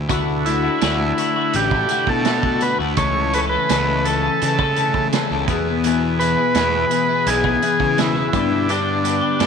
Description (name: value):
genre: psychedelic rock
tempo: 84 BPM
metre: 4/4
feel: straight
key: A major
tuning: A4 = 440 Hz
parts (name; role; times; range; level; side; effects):
- fuzz picked electric bass; bass; 0.0-9.5 s; A1 to C#3; -23 LUFS; equal; overdrive
- tonewheel organ; sustained chords; 0.1-9.5 s; G4 to A5; -29 LUFS; right 14 dB; slow rotary speaker, overdrive
- twelve-string electric guitar; riff; 0.1-9.5 s; E2 to A4; -22 LUFS; left 14 dB; phaser
- vintage drum kit; drums; 0.1-9.5 s; hi-hat, kick drum, snare drum; -25 LUFS; right 7 dB; none
- overdriven combo organ; melody; 0.5-9.5 s; D4 to C#5; -20 LUFS; right 2 dB; tape echo
room: light reverb, small room ambience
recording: 1960s-style stereo with parts hard left and right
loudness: -16 LUFS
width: side -6 dB against mid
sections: 0.0-9.5 A section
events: none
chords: 0.1 Dadd9; 3.0 A/C#; 5.5 E; 8.3 G